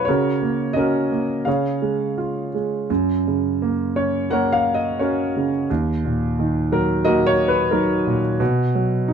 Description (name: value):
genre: classical, lyrical solo piano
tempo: 87 BPM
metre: 4/4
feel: rubato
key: F# major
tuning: A4 = 442 Hz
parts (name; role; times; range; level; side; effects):
- warm concert grand piano; solo; 0.0-9.1 s; D#2 to F#5; -18 LUFS; right 1 dB; none
room: light reverb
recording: dark, warm production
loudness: -18 LUFS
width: side -7 dB against mid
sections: 0.0-2.9 A section; 2.9-9.1 B section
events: none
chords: 0.1 F#/C#; 1.5 C#; 2.9 F#; 5.7 D#m; 8.4 B5